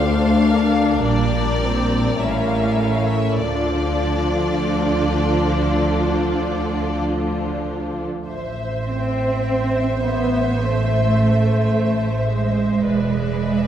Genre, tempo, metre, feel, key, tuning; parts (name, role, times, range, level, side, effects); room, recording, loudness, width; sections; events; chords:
classical, slow romantic movement for string orchestra; 48-54 BPM; 4/4; rubato; D minor, A minor from 8.3 s; A4 = 440 Hz
clear studio violin section; melody; 0.0-13.7 s; D5 to F5; -28 LUFS; left 4 dB
rich studio violin section; second line; 0.0-13.7 s; D4 to E5; -27 LUFS; left 2 dB
rich studio viola section; accompaniment; 0.0-13.7 s; F3 to C5; -23 LUFS; equal
rich studio cello section; bass; 0.0-13.7 s; D2 to C4; -23 LUFS; right 2 dB
rich studio double bass section; bass; 0.0-13.7 s; E1 to D2; -22 LUFS; right 1 dB
wet scoring stage reverb, RT60 1.6 s; heard from further back in the room; -17 LUFS; side -10 dB against mid
0.0-8.3 A section; 8.3-13.7 B section
0.0 Dm; 1.0 Gm/Bb; 2.2 A7; 3.4 Dm; 8.3 Am; 12.9 E7